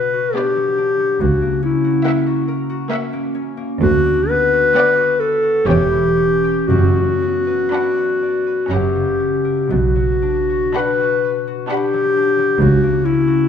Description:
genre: classical, slow romantic movement for symphony orchestra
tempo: 53-71 BPM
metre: 3/4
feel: rubato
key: B minor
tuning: A4 = 440 Hz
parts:
  - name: warm symphonic violin section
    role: melody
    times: 0.0-12.4 s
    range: D5 to B5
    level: -32 LUFS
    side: left 5 dB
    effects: none
  - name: dark clarinet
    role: second line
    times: 0.0-13.5 s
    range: E4 to B4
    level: -16 LUFS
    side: left 2 dB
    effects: none
  - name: warm symphonic violin section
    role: second line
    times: 0.0-12.4 s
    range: C#5 to F#5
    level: -28 LUFS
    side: left 1 dB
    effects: none
  - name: warm symphonic viola section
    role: accompaniment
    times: 0.0-12.4 s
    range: A#3 to D4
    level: -29 LUFS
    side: right 2 dB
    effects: none
  - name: concert harp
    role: arpeggios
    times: 0.0-13.5 s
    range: F#2 to D5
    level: -22 LUFS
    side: left 3 dB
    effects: none
  - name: dark symphonic double bass section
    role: bass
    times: 1.2-13.3 s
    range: E1 to D2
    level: -21 LUFS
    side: right 3 dB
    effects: none
  - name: rich symphonic cello section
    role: bass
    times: 1.2-13.3 s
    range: C#2 to B2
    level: -21 LUFS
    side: right 3 dB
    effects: none
  - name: timpani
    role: percussion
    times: 6.7-8.2 s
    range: F#2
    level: -24 LUFS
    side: left 1 dB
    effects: none
room: moderate concert hall reverb, RT60 1.9 s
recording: minimal, uncompressed stereo recording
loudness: -14 LUFS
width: side -8 dB against mid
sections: 0.0-13.5 A section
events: none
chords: 0.0 Bm; 1.2 F#7/C#; 3.8 Bm/D; 5.7 C#dim/E; 6.7 Bm/F#; 8.7 F#; 9.7 Bm; 12.6 F#7/C#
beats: 0.36 | 1.21 2.06 2.92 | 3.81 4.75 5.67 | 6.69 7.73 8.71 | 9.70 10.77 11.71 | 12.62

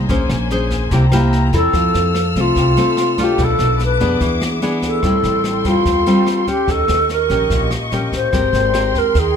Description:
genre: bossa nova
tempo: 146 BPM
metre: 4/4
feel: straight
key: F major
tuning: A4 = 440 Hz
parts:
  - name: nylon-string guitar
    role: accompaniment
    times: 0.0-9.4 s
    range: A2 to C5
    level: -19 LUFS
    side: left 1 dB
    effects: none
  - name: muted symphonic string section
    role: sustained chords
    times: 0.0-9.4 s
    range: Db4 to F6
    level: -25 LUFS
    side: left 4 dB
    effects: none
  - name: upright bass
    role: bass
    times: 0.0-9.3 s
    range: Ab1 to F2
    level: -19 LUFS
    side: equal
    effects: none
  - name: jazz brush drum kit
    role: drums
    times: 0.1-9.2 s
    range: kick drum, rim click, snare drum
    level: -24 LUFS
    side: equal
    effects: none
  - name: alto flute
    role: melody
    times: 1.6-9.4 s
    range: F4 to C5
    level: -16 LUFS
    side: equal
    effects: none
room: light reverb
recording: close, detailed microphones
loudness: -13 LUFS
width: side -7 dB against mid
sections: 0.0-1.7 A section; 1.7-9.4 B section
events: alto flute solo 0.0-1.7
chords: 0.1 Bbm9; 0.9 C7; 1.7 Fmaj7; 3.4 Bm7b5; 4.2 E7; 5.0 Am7; 6.7 Eb7; 8.3 Abmaj9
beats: | 0.10 0.51 0.92 1.33 | 1.74 2.15 2.56 2.97 | 3.39 3.80 4.21 4.62 | 5.03 5.45 5.86 6.27 | 6.68 7.09 7.50 7.92 | 8.33 8.74 9.15

